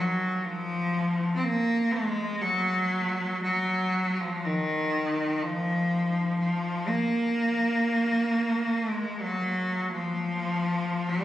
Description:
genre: caucasian folk, Caucasian lament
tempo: 58-65 BPM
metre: 3/4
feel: rubato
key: unclear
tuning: A4 = 439 Hz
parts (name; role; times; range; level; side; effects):
- bright cello; solo; 0.0-11.2 s; Eb3 to C4; -25 LUFS; equal; none
room: moderate cathedral reverb, RT60 5.9 s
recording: recorded on a phone in the room, club reverb, compression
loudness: -25 LUFS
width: side -13 dB against mid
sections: 0.0-11.2 A section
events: none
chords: none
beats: 0.45 | 1.42 2.40 3.42 | 4.43 5.42 6.39 | 7.36 8.30 9.22 | 10.16 11.10

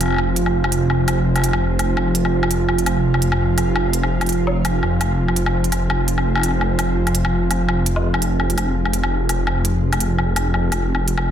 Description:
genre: half-time drum and bass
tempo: 168 BPM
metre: 4/4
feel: swing 56% on 16ths, half-time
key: F minor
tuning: A4 = 440 Hz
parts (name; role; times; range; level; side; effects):
- bowed-like drone; sustained chords; 0.0-11.3 s; C3 to F5; -21 LUFS; right 2 dB; built-in reverb
- phased detuned saw bass; bass; 0.0-11.3 s; F1; -20 LUFS; equal; phaser
- electronic hi-hat and woodblock; drums; 0.0-11.2 s; none; -23 LUFS; left 1 dB; none
room: moderate digital room reverb, RT60 1.3 s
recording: dense, heavily limited modern master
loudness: -16 LUFS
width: side -9 dB against mid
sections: 0.0-11.3 A section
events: none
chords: 0.0 F5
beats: 0.18 | 0.54 0.90 1.26 1.61 | 1.97 2.33 2.69 3.04 | 3.40 3.76 4.11 4.47 | 4.83 5.18 5.54 5.90 | 6.26 6.61 6.97 7.33 | 7.68 8.04 8.40 8.76 | 9.11 9.47 9.83 10.19 | 10.54 10.90 11.26

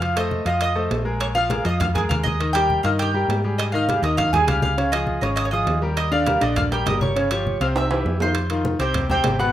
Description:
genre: latin, salsa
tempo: 202 BPM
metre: 4/4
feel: straight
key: F minor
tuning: A4 = 440 Hz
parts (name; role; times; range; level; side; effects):
- mandolin; melody; 0.0-9.5 s; G4 to Gb6; -23 LUFS; right 1 dB; plate reverb
- bright grand piano; accompaniment; 0.0-9.5 s; B2 to F5; -24 LUFS; left 2 dB; plate reverb
- hollow-body short-scale fingered electric bass; bass; 0.0-9.5 s; G1 to Ab2; -24 LUFS; equal; none
- congas; percussion; 0.0-9.4 s; none; -28 LUFS; equal; none
- timbales; percussion; 0.0-9.4 s; none; -30 LUFS; right 5 dB; none
room: wet studio reverb, RT60 0.6 s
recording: rough home demo mix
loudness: -18 LUFS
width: side -12 dB against mid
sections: 0.0-8.4 A section; 8.4-9.5 B section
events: drum fill 7.8-8.4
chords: 0.0 F7; 1.2 Bb7(no3); 2.4 Eb; 3.6 Ab5; 4.8 Dbadd9; 6.0 Ebmaj9; 7.2 Dbmaj7#11/G; 7.8 C; 8.4 Fm9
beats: | 0.01 0.31 0.61 0.91 | 1.21 1.50 1.80 2.10 | 2.40 2.70 2.99 3.29 | 3.59 3.89 4.18 4.48 | 4.78 5.08 5.38 5.67 | 5.97 6.27 6.57 6.87 | 7.16 7.46 7.76 8.06 | 8.35 8.65 8.95 9.25

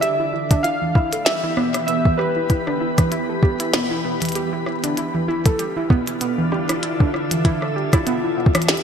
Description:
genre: IDM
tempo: 97 BPM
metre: 4/4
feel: swing 56% on 16ths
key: E phrygian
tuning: A4 = 440 Hz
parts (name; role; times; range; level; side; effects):
- warbly lo-fi synth keys; melody; 0.0-3.1 s; B4 to F5; -23 LUFS; right 1 dB; chorus, ping-pong delay
- glassy FM pad; sustained chords; 0.0-8.8 s; D3 to B5; -25 LUFS; left 1 dB; ensemble chorus, built-in reverb, vintage 12-bit sampler grit, sidechain pumping
- warbly dusty pluck; arpeggios; 0.0-8.8 s; E3 to A4; -23 LUFS; right 2 dB; chorus, digital delay
- glitchy drum kit; drums; 0.0-8.8 s; hi-hat, rim click, snare drum; -24 LUFS; equal; overdrive
- electronic kick drum; drums; 0.5-8.6 s; none; -16 LUFS; equal; overdrive
room: wet lush hall reverb, RT60 2.4 s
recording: bright 1980s-style digital production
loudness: -17 LUFS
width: side -7 dB against mid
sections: 0.0-8.8 A section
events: none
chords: 0.0 Em; 5.0 Dmadd9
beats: | 0.03 0.64 1.26 1.88 | 2.50 3.12 3.74 4.36 | 4.97 5.59 6.21 6.83 | 7.45 8.07 8.69

